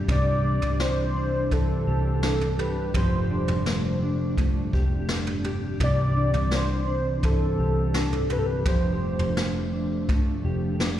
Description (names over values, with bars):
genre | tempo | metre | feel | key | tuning
dream pop | 84 BPM | 4/4 | straight | C major | A4 = 438 Hz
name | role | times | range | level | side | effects
string machine, cellos | sustained chords | 0.0-11.0 s | C3 to D4 | -31 LUFS | right 1 dB | ensemble chorus
mellow electric guitar | arpeggios | 0.0-11.0 s | C3 to G4 | -28 LUFS | equal | ensemble chorus, digital delay
vintage muted fingered electric bass | bass | 0.0-11.0 s | F1 to C2 | -29 LUFS | equal | none
warm velvety synth lead | melody | 0.1-9.7 s | A4 to D5 | -30 LUFS | equal | chorus, digital delay
jazz brush drum kit | drums | 0.1-11.0 s | kick drum, snare drum, toms | -27 LUFS | equal | none
room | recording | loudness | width
moderate plate reverb, RT60 3.8 s | played on a big sound system in a bare room, stone room reverb | -22 LUFS | side -12 dB against mid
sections
0.0-11.0 A section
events
none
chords
0.1 Cadd9; 2.9 F69; 5.8 Cadd9; 8.7 F69